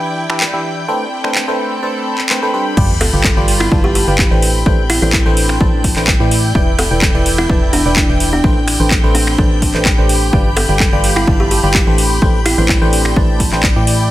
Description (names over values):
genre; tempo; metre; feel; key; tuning
piano house; 127 BPM; 4/4; straight; A minor; A4 = 440 Hz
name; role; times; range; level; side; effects
string machine, violins; sustained chords; 0.0-14.1 s; G5 to G6; -25 LUFS; equal; ensemble chorus, sidechain pumping
barking FM electric piano; riff; 0.0-14.1 s; E3 to A5; -19 LUFS; equal; chorus, phaser, sidechain pumping, tape echo
clear studio string section; texture; 0.0-14.1 s; C4 to B5; -24 LUFS; equal; sidechain pumping
house drum kit; drums; 0.3-14.0 s; crash cymbal, finger snaps, handclaps, hi-hat; -18 LUFS; equal; overdrive
organ-like FM bass; bass; 2.8-14.1 s; E1 to A2; -17 LUFS; equal; sidechain pumping
electronic kick drum; drums; 2.8-13.7 s; none; -15 LUFS; equal; overdrive
sub drop; sound effects; 2.8-4.7 s; none; -23 LUFS; equal; none
buzzing kalimba; melody; 3.0-12.7 s; D4 to A4; -20 LUFS; equal; tape echo
room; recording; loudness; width
light reverb; none; -11 LUFS; side -15 dB against mid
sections
0.0-2.8 A section; 2.8-14.1 B section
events
drop 2.8-14.1; impact 2.8-4.7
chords
0.0 Em7; 0.9 Am11; 2.8 G7; 4.4 Am11; 6.3 Em7; 8.4 Am11; 10.3 G7; 12.0 Am11